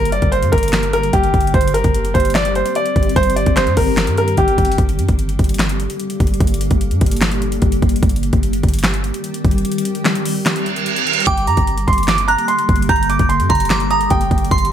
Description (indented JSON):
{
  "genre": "hip hop, trap",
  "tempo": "148 BPM",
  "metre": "4/4",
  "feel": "half-time",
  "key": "G minor",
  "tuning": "A4 = 437 Hz",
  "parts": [
    { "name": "clear concert grand piano", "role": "melody", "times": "0.0-4.8, 11.3-14.7 s", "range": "G4 to D6", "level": "-17 LUFS", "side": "right 1 dB", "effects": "ping-pong delay" },
    { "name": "granular cloud pad", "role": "sustained chords", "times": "0.0-14.7 s", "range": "D3 to G4", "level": "-22 LUFS", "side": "equal", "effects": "built-in reverb" },
    { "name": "clean 808-style bass", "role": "bass", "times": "0.0-14.7 s", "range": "F#1 to G2", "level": "-19 LUFS", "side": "equal", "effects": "none" },
    { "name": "pop drum kit", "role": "drums", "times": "0.1-14.7 s", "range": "handclaps, hi-hat, kick drum, snare drum", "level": "-18 LUFS", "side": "equal", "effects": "none" },
    { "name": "reverse cymbal", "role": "sound effects", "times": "10.6-11.3 s", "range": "none", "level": "-18 LUFS", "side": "right 7 dB", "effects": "none" },
    { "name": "glassy synth bell", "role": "second line", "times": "11.3-14.7 s", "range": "C6 to G6", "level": "-22 LUFS", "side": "equal", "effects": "chorus, tremolo, ping-pong delay" }
  ],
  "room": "digital ambience",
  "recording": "none",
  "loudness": "-14 LUFS",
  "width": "side -10 dB against mid",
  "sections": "0.0-11.3 A section; 11.3-14.7 B section",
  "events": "kick muted 9.6-11.3; reverse cymbal 10.6-11.3",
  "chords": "0.0 Gm; 1.5 Cm; 4.8 Gm; 8.0 Cm; 11.3 Gm"
}